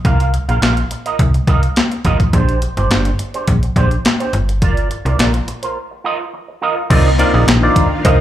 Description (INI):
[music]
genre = early-eighties boogie funk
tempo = 105 BPM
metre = 4/4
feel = straight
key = C minor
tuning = A4 = 440 Hz
[part]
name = electric guitar with an envelope filter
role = riff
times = 0.0-8.2 s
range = D4 to F5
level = -21 LUFS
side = right 4 dB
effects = ensemble chorus, slapback echo
[part]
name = slap-like FM bass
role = bass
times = 0.0-8.2 s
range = G1 to C2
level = -15 LUFS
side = equal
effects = none
[part]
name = clean 12-bit digital drum machine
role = drums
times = 0.0-8.2 s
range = crash cymbal, handclaps, hi-hat, kick drum, snare drum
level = -16 LUFS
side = equal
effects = overdrive
[part]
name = barky tine electric piano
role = accompaniment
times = 6.9-8.2 s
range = C4 to Eb5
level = -16 LUFS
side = left 1 dB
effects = phaser, slapback echo
[part]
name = string machine, full ensemble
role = sustained chords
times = 6.9-8.2 s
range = Eb3 to F4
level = -20 LUFS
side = left 2 dB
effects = phaser, ensemble chorus
[sound]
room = digital ambience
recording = live gig heard through the venue's PA, club reverb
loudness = -13 LUFS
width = side -12 dB against mid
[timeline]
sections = 0.0-6.9 A section; 6.9-8.2 B section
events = break 5.8-6.9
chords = 0.0 Cm7; 2.3 Bb69; 4.3 Gm7; 5.8 F7sus4; 6.9 Cm11